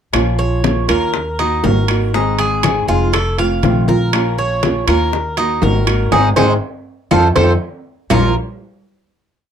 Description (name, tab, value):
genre	latin, Cuban son and guajira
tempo	121 BPM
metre	4/4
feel	straight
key	Bb minor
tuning	A4 = 440 Hz
part	nylon-string guitar	accompaniment	0.1-8.3 s	Bb2 to Ab4	-18 LUFS	equal	none
part	upright bass	bass	0.1-8.3 s	F1 to F2	-18 LUFS	equal	none
part	bongos	percussion	0.1-8.2 s	none	-25 LUFS	left 6 dB	none
part	claves	percussion	0.1-8.2 s	none	-29 LUFS	left 7 dB	none
part	congas	percussion	0.1-8.2 s	none	-22 LUFS	left 4 dB	none
part	timbales	percussion	0.1-8.2 s	none	-22 LUFS	right 6 dB	none
part	Cuban tres	arpeggios	0.4-8.3 s	Bb3 to F5	-18 LUFS	right 1 dB	none
room	moderate small room reverb, RT60 0.5 s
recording	dark, warm production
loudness	-13 LUFS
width	side -8 dB against mid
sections	0.1-8.1 montuno (vamp); 8.1-9.5 final chord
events	band accent 6.1-8.1; drum fill 7.4-8.1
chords	0.1 Bbm; 1.1 Ebm; 2.1 Ab; 3.1 F7; 4.1 Bbm; 5.1 Ebm; 6.1 Ab; 7.1 F7; 8.1 Bbm